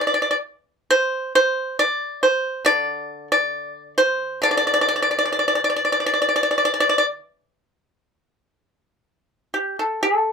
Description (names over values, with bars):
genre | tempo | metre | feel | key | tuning
chinese traditional, Chinese solo plucked strings | 60-70 BPM | 4/4 | rubato | unclear | A4 = 439 Hz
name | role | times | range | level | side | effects
pipa | solo | 0.0-10.3 s | D3 to D5 | -18 LUFS | equal | none
room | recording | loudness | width
little or no reverb | close, detailed microphones | -18 LUFS | side -6 dB against mid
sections
0.0-8.2 A section; 8.2-10.3 B section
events
none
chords
none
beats
0.04 | 0.91 1.79 2.67 3.54 | 4.43 5.33 6.24 7.21 | 8.15 9.07 10.01